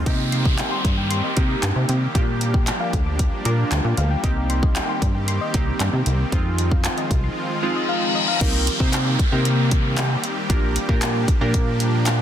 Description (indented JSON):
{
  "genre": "dance-pop",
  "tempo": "115 BPM",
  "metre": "4/4",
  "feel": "straight",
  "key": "C minor",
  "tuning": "A4 = 441 Hz",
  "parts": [
    { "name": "supersaw pad", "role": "sustained chords", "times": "0.0-12.2 s", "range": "Eb3 to G4", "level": "-28 LUFS", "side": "equal", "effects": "sidechain pumping" },
    { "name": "glassy digital keys", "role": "accompaniment", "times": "0.1-12.2 s", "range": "Ab3 to Bb5", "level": "-27 LUFS", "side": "right 2 dB", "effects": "chorus, sidechain pumping" },
    { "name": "soft round pluck", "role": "arpeggios", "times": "0.1-8.4 s", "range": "Eb5 to D6", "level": "-31 LUFS", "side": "left 7 dB", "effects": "chorus, sidechain pumping, tape echo" },
    { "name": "plucky analog bass", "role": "bass", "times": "0.1-12.2 s", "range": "Bb1 to C3", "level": "-22 LUFS", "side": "equal", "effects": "sidechain pumping" },
    { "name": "pop drum kit", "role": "drums", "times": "0.1-12.2 s", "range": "crash cymbal, handclaps, hi-hat, kick drum", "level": "-22 LUFS", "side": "equal", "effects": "none" },
    { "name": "downlifter and reverse cymbal", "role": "sound effects", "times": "0.1-12.2 s", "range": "none", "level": "-28 LUFS", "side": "left 1 dB", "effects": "none" },
    { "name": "group handclap", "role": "percussion", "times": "8.9-12.2 s", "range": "none", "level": "-34 LUFS", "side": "left 7 dB", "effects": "none" }
  ],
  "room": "little or no reverb",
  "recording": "dense, heavily limited modern master",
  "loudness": "-18 LUFS",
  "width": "side -10 dB against mid",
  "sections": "0.1-8.4 A section; 8.4-12.2 B section",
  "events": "reverse cymbal 7.6-8.4; synth keys fill 7.6-8.4, 11.8-12.2",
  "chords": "0.1 Cm7; 2.1 Gm7; 4.2 Cm7; 6.3 Fm7; 8.4 Cm7; 10.5 Gm7/Bb",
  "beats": "| 0.06 0.58 1.11 1.63 | 2.15 2.67 3.19 3.71 | 4.24 4.76 5.28 5.80 | 6.32 6.85 7.37 7.89 | 8.41 8.93 9.46 9.98 | 10.50 11.02 11.54 12.06"
}